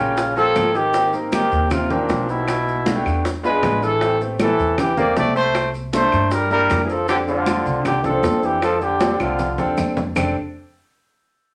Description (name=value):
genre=Afro-Cuban jazz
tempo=156 BPM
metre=4/4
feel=straight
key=F major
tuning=A4 = 439 Hz
part: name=mellow trumpet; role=melody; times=0.0-9.7 s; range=D4 to D5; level=-23 LUFS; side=equal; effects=none
part: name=brilliant trombone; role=second line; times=0.0-9.7 s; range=Bb2 to Bb3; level=-26 LUFS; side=equal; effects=none
part: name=clear baby grand piano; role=accompaniment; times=0.0-10.3 s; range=Eb3 to Bb4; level=-27 LUFS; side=equal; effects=none
part: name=upright bass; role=bass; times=0.0-10.3 s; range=F1 to G2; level=-29 LUFS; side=equal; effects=none
part: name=bongos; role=percussion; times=0.2-10.2 s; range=none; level=-28 LUFS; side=equal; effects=none
part: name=congas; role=percussion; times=0.2-10.3 s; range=none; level=-30 LUFS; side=equal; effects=none
part: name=maracas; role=percussion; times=0.2-10.2 s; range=none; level=-44 LUFS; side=equal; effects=none
part: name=claves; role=percussion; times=0.6-10.3 s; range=none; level=-35 LUFS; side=equal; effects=none
room=wet studio reverb, RT60 0.6 s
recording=none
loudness=-19 LUFS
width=mono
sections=0.0-10.2 A section; 10.2-11.5 B section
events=drum fill 9.0-10.2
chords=0.0 Eb9; 0.9 Abmaj9; 2.5 Bm7; 3.2 E7b9; 4.0 Am7; 5.5 C13; 7.1 F69